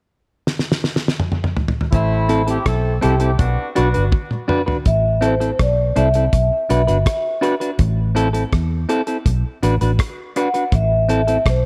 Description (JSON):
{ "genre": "roots reggae", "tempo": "82 BPM", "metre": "4/4", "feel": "straight", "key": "A dorian", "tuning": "A4 = 435 Hz", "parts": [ { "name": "damped 70s drum kit", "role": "drums", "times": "0.5-11.6 s", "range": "hi-hat, kick drum, rim click, snare drum, toms", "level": "-22 LUFS", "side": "equal", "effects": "analog delay" }, { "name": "mellow horn section", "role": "second line", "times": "1.9-4.1 s", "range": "A3 to A4", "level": "-25 LUFS", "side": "equal", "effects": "tape echo" }, { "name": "vintage muted fingered electric bass", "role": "bass", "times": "1.9-11.7 s", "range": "G1 to E2", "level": "-21 LUFS", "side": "equal", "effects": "none" }, { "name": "clean electric guitar", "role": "accompaniment", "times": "2.3-11.4 s", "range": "C4 to B4", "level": "-24 LUFS", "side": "equal", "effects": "tape echo" }, { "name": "vibraphone with soft mallets", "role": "melody", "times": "4.9-11.7 s", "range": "C5 to F#5", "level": "-22 LUFS", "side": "equal", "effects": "tape echo" } ], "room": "light reverb, small room ambience", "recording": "none", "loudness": "-18 LUFS", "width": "mono", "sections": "0.0-1.9 A section; 1.9-4.9 B section; 4.9-11.7 C section", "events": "drum fill 0.5-1.9, 4.1-4.9", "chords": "0.0 N.C.; 1.9 Am; 3.4 Bm; 4.9 Am; 6.3 Bm; 7.8 Am; 9.3 Bm; 10.7 Am", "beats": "0.47 1.20 | 1.93 2.66 3.40 4.13 | 4.86 5.59 6.33 7.06 | 7.79 8.52 9.26 9.99 | 10.72 11.45" }